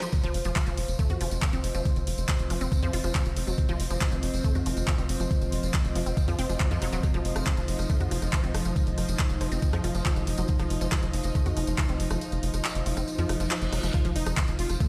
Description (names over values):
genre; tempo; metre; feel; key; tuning
psychedelic trance; 139 BPM; 4/4; straight; unclear; A4 = 440 Hz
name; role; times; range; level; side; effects
unison pluck; riff; 0.0-14.9 s; F3 to Gb4; -39 LUFS; equal; sidechain pumping, delay
drum and bass drum kit; drums; 0.0-14.9 s; handclaps, hi-hat, rim click; -36 LUFS; equal; overdrive
tambourine; percussion; 0.0-14.9 s; none; -44 LUFS; equal; none
airy breathy pad; texture; 0.0-14.9 s; F4 to Bb5; -40 LUFS; equal; chorus, sidechain pumping
evolving wavetable pad; sustained chords; 1.0-14.9 s; F3 to Eb4; -39 LUFS; equal; ensemble chorus, built-in reverb, sidechain pumping
electronic kick drum; drums; 0.1-14.9 s; none; -28 LUFS; equal; overdrive
tight sequencer bass; bass; 0.2-14.8 s; Eb1 to F2; -31 LUFS; equal; none
reverse cymbal; sound effects; 13.3-13.9 s; none; -42 LUFS; equal; none
supersaw stab; melody; 13.9-14.7 s; Eb4 to F4; -38 LUFS; equal; phaser, sidechain pumping, digital delay
room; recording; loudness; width
light reverb; played on a big sound system in a bare room, stone room reverb; -27 LUFS; mono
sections
0.0-13.9 A section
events
filter sweep on synth arpeggio sound 0.0-13.9; kick drops out 12.2-13.9; reverse cymbal 13.3-13.9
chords
0.0 F5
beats
| 0.13 0.56 0.99 1.42 | 1.85 2.29 2.72 3.15 | 3.58 4.01 4.44 4.88 | 5.31 5.74 6.17 6.60 | 7.03 7.47 7.90 8.33 | 8.76 9.19 9.62 10.06 | 10.49 10.92 11.35 11.78 | 12.21 12.65 13.08 13.51 | 13.94 14.37 14.80